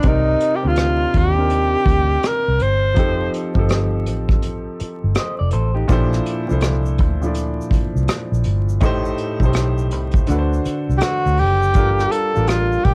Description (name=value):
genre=R&B, neo-soul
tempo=82 BPM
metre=4/4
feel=swing 62% on 16ths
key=unclear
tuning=A4 = 440 Hz
part: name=breathy tenor saxophone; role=melody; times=0.0-3.3, 11.0-12.9 s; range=Eb4 to C5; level=-21 LUFS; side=equal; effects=cassette tape
part: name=warm grand piano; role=accompaniment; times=0.0-12.9 s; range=A2 to D5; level=-26 LUFS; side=equal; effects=cassette tape
part: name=vintage muted fingered electric bass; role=bass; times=0.0-12.9 s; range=F1 to Eb2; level=-22 LUFS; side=equal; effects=transformer saturation
part: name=vintage brush drum kit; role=drums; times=0.0-12.9 s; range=hi-hat, kick drum, rim click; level=-22 LUFS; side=equal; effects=cassette tape
part: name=electric guitar through a small old amp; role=second line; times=5.2-6.1 s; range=Eb4 to Eb5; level=-28 LUFS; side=equal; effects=cassette tape
part: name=egg shaker and finger snaps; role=percussion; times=5.9-12.8 s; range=none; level=-44 LUFS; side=equal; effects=none
room=little or no reverb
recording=home recording on cassette, vinyl crackle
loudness=-18 LUFS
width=mono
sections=0.0-12.9 A section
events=none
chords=0.0 Cm9; 3.0 F9; 5.9 Bbmaj9#11; 8.8 Am7b5; 10.3 D7; 11.7 Gm9